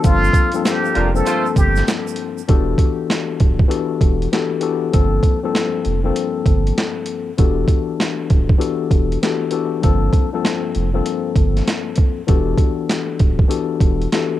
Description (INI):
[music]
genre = hip hop, boom-bap hip-hop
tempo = 98 BPM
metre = 4/4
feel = swing 63% on 16ths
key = unclear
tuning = A4 = 438 Hz
[part]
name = trumpet with plunger mute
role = melody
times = 0.0-1.8 s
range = F4 to A4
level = -21 LUFS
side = right 1 dB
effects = high-pass filter, low-pass filter, cassette tape, analog delay
[part]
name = mellow tine electric piano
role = accompaniment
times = 0.0-14.4 s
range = G2 to A4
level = -20 LUFS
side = left 7 dB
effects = overdrive, medium stereo tremolo, cassette tape, high-pass filter, low-pass filter
[part]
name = warm sub bass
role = bass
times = 0.0-14.1 s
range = D1 to G1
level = -20 LUFS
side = right 1 dB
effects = none
[part]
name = boom bap sampler-style drum kit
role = drums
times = 0.0-14.3 s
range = hi-hat, kick drum, snare drum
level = -16 LUFS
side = right 1 dB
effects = cassette tape
[part]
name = tube shaker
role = percussion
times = 0.0-2.5 s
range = none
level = -38 LUFS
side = right 13 dB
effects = none
[part]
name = warm horn section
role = stabs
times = 0.9-1.5 s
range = F3 to C5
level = -25 LUFS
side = right 2 dB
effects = high-pass filter, low-pass filter, cassette tape, analog delay
[sound]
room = studio ambience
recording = home recording on cassette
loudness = -15 LUFS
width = side -13 dB against mid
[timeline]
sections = 0.0-2.5 A section; 2.5-14.4 B section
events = none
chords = 0.0 Gm11; 2.5 Em11; 4.9 Gm11; 7.4 Em11; 9.8 Gm11; 12.3 Em11